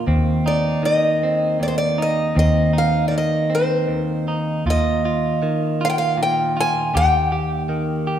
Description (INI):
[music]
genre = acoustic folk-pop ballad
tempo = 52 BPM (dotted quarters)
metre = 6/8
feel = straight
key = unclear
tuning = A4 = 440 Hz
[part]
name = direct-recorded clean electric guitar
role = accompaniment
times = 0.0-8.2 s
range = Eb2 to G4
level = -22 LUFS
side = right 1 dB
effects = none
[part]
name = vintage muted fingered electric bass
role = bass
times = 0.0-8.2 s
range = Eb2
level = -21 LUFS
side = left 1 dB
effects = none
[part]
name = picked old ladder-braced acoustic guitar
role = melody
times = 0.5-8.2 s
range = C5 to Ab5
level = -20 LUFS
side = equal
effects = none
[sound]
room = wet concert hall reverb, RT60 1.7 s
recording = recorded in a church or concert hall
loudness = -17 LUFS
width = side -10 dB against mid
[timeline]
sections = 0.0-8.2 A section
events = none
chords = 0.1 Cm/Eb; 4.7 Ebsus2; 7.0 Eb